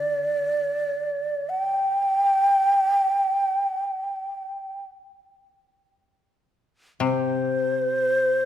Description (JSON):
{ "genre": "japanese traditional, Japanese chamber music", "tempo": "free time", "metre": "none", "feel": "none", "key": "unclear", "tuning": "A4 = 439 Hz", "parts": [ { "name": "breathy mellow shakuhachi", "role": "melody", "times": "0.0-8.5 s", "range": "C5 to G5", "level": "-21 LUFS", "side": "equal", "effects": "none" }, { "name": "koto", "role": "accompaniment", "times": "0.0-8.5 s", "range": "C3 to D3", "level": "-28 LUFS", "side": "left 7 dB", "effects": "none" } ], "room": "moderate concert hall reverb, RT60 2.1 s", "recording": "none", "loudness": "-21 LUFS", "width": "side -10 dB against mid", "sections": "0.0-8.5 A section", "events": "none", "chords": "none" }